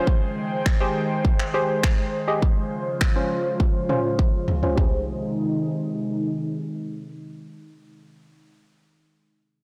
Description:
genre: dance-pop.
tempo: 102 BPM.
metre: 4/4.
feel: straight.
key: Ab major.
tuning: A4 = 442 Hz.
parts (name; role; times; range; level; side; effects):
hollow square pluck; accompaniment; 0.0-8.5 s; Db4 to Eb5; -28 LUFS; equal; chorus, sidechain pumping, low-pass filter.
airy breathy pad; sustained chords; 0.0-7.9 s; C3 to G5; -29 LUFS; equal; chorus, sidechain pumping, low-pass filter.
house drum kit; drums; 0.1-4.9 s; finger snaps, kick drum, toms; -24 LUFS; equal; soft clipping on snare.
room: moderate echo chamber reverb, RT60 1.4 s, digital ambience.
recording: blown-out, overdriven recording, overdrive.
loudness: -23 LUFS.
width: mono.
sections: 0.0-4.8 A section; 4.8-7.1 B section.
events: filter sweep 0.0-4.8; drum fill 3.6-4.8.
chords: 0.1 Abmaj7; 2.4 Dbmaj7; 4.8 Abmaj7.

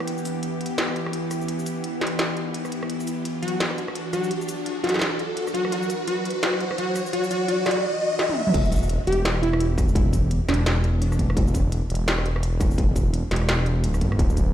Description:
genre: half-time drum and bass.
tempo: 170 BPM.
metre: 4/4.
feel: swing 59% on 16ths, half-time.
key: unclear.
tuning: A4 = 440 Hz.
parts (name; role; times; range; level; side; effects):
bowed-like drone; sustained chords; 0.0-8.5 s; E3 to G4; -30 LUFS; equal; built-in reverb, vintage 12-bit sampler grit, sidechain pumping.
industrial drum kit; drums; 0.0-14.5 s; crash cymbal, hi-hat, rim click, shaker, snare drum, toms; -28 LUFS; equal; none.
riser; sound effects; 0.2-8.5 s; none; -31 LUFS; equal; none.
plucky unison lead; melody; 3.4-10.8 s; D4 to G4; -27 LUFS; equal; ping-pong delay.
dark detuned saw bass; bass; 8.5-14.5 s; D1 to G1; -22 LUFS; equal; none.
electronic kick drum; drums; 8.5-14.5 s; none; -23 LUFS; equal; distortion.
room: light reverb, digital ambience.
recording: played on a big sound system in a bare room, large studio reverb.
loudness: -21 LUFS.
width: side -11 dB against mid.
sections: 0.0-8.5 A section; 8.5-14.5 B section.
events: build-up 0.0-8.5; riser 0.2-8.5; drum fill 8.2-8.5; drop 8.5-14.5.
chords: 0.0 Em; 2.9 Dadd9; 8.5 N.C..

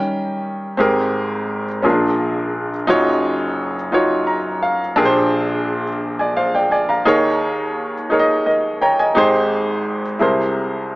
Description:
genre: gospel.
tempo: 57 BPM (dotted quarters).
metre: 6/8.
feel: straight.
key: Ab major.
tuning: A4 = 444 Hz.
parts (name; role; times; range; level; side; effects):
clear baby grand piano; solo; 0.0-11.0 s; Gb1 to Bb5; -16 LUFS; equal; none.
room: moderate echo chamber reverb, RT60 1.4 s.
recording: small speaker sound.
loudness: -16 LUFS.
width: side -20 dB against mid.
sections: 0.8-11.0 A section.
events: grand piano fill 3.9-5.0, 8.1-9.2.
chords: 0.0 D#7; 0.8 Abmaj9; 1.8 Bb7; 2.9 Ebm9/Gb; 5.0 Bb13; 7.1 Eb7sus4; 9.2 Abmaj7; 10.2 C7b13.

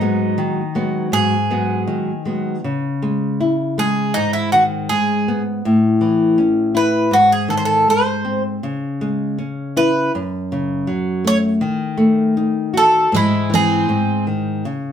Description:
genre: fado-style ballad.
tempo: 80 BPM.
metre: 2/4.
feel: rubato.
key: C# minor.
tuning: A4 = 440 Hz.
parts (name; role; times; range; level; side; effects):
Greek bouzouki; melody; 0.0-14.2 s; D#4 to C#5; -17 LUFS; right 1 dB; none.
nylon-string guitar; accompaniment; 0.0-14.9 s; F#2 to F#4; -17 LUFS; left 1 dB; none.
picked twelve-string acoustic guitar; second line; 13.1-14.2 s; G#3 to B#3; -21 LUFS; right 5 dB; none.
room: wet studio reverb, RT60 0.6 s.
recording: band playing live in one room.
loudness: -15 LUFS.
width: side -8 dB against mid.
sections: 0.0-2.6 A section; 2.6-14.9 B section.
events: none.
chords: 0.0 G#m7; 2.6 C#m; 4.2 G#m; 5.6 A; 7.1 G#; 8.6 C#m; 10.1 F#m; 11.6 D#dim; 13.1 G#aug; 13.9 G#.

